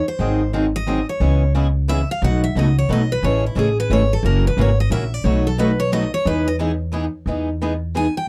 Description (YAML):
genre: acoustic string swing (jazz manouche)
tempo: 178 BPM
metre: 3/4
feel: swing 62% on 8ths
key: E major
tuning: A4 = 440 Hz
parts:
  - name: picked steel-string acoustic guitar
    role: melody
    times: 0.0-8.3 s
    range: E4 to G#5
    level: -25 LUFS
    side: equal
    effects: none
  - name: picked steel-string acoustic guitar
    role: accompaniment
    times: 0.2-8.1 s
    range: B2 to G#4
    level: -24 LUFS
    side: equal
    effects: none
  - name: picked swing-style acoustic guitar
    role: accompaniment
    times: 0.2-8.1 s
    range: B2 to B4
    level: -32 LUFS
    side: equal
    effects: none
  - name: upright bass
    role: bass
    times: 0.2-8.1 s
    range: F#1 to E2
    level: -22 LUFS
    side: equal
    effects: none
room: little or no reverb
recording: dry, close 1970s-style studio recording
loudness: -19 LUFS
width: mono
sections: 0.0-7.3 A section; 7.3-8.3 A section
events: steel-string acoustic guitar solo 0.0-8.3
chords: 0.2 G#7; 1.2 C#m7; 2.2 B7; 3.2 Amaj7; 4.2 F#7; 5.3 B7; 6.3 Emaj7